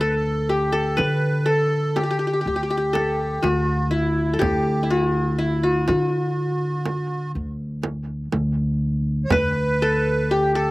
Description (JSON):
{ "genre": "Arabic maqam ensemble", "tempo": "123 BPM (eighths)", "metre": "10/8", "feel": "straight", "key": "D maqam rast", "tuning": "A4 = 441 Hz", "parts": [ { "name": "qanun", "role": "melody", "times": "0.0-10.7 s", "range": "E4 to B4", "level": "-22 LUFS", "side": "left 1 dB", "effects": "none" }, { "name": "accordion", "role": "second line", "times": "0.0-10.7 s", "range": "E4 to C5+50c", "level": "-28 LUFS", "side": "right 2 dB", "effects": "light tremolo tuning, slapback echo" }, { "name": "upright bass", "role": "bass", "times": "0.0-10.7 s", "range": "D2 to D3", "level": "-23 LUFS", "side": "equal", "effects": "none" }, { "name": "frame drum", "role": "percussion", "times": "1.0-9.5 s", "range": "none", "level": "-26 LUFS", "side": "right 4 dB", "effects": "none" }, { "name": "darbuka", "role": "percussion", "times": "9.3-9.9 s", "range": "none", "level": "-27 LUFS", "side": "equal", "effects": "none" } ], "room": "little or no reverb", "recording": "recorded outdoors, with no room sound", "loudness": "-19 LUFS", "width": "side -20 dB against mid", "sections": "0.0-10.7 A section", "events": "none", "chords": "none" }